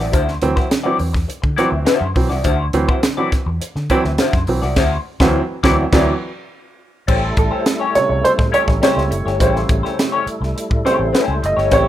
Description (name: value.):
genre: funk.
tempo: 104 BPM.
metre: 4/4.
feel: straight.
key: unclear.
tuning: A4 = 440 Hz.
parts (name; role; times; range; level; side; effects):
semi-hollow electric guitar; accompaniment; 0.0-11.9 s; C#4 to D5; -20 LUFS; left 5 dB; wah.
warm upright piano; stabs; 0.0-11.9 s; B#2 to D#5; -18 LUFS; right 2 dB; slapback echo.
vintage muted fingered electric bass; bass; 0.0-11.9 s; F#1 to D3; -21 LUFS; equal; none.
crisp fusion drum kit; drums; 0.0-11.9 s; crash cymbal, hi-hat, kick drum, snare drum; -19 LUFS; equal; none.
percussive tonewheel organ; sustained chords; 7.1-11.9 s; G3 to A4; -24 LUFS; equal; slow rotary speaker, overdrive, chorus vibrato.
room: studio ambience.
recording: rough home demo mix.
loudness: -14 LUFS.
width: side -12 dB against mid.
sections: 0.0-7.1 A section; 7.1-11.9 B section.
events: band accent 4.8-7.1; upright piano solo 7.1-11.9.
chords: 0.0 D9; 7.1 A7#9.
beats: | 0.14 0.72 1.30 1.88 | 2.45 3.03 3.61 4.19 | 4.77 5.35 5.93 6.51 | 7.08 7.66 8.24 8.82 | 9.40 9.98 10.56 11.14 | 11.72.